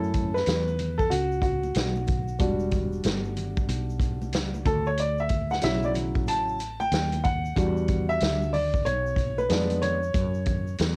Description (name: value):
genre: hip hop, jazz-hop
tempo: 93 BPM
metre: 4/4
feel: swing 64% on 16ths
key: E dorian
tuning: A4 = 440 Hz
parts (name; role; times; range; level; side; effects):
- warm upright piano; accompaniment; 0.0-10.7 s; C#3 to A5; -30 LUFS; equal; none
- woody fretless electric bass; bass; 0.0-11.0 s; E1 to F#2; -32 LUFS; equal; none
- tube shaker and congas; percussion; 0.0-11.0 s; none; -43 LUFS; equal; none
- vintage drum kit; drums; 0.1-11.0 s; hi-hat, kick drum, snare drum; -31 LUFS; equal; cassette tape
room: light reverb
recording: home recording on cassette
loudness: -26 LUFS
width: mono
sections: 0.0-11.0 A section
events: upright piano solo 0.0-11.0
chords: 0.0 F#m7; 2.4 Em9; 4.7 Dmaj9; 7.6 Em9; 9.5 Fdim7; 10.1 F#7(no3)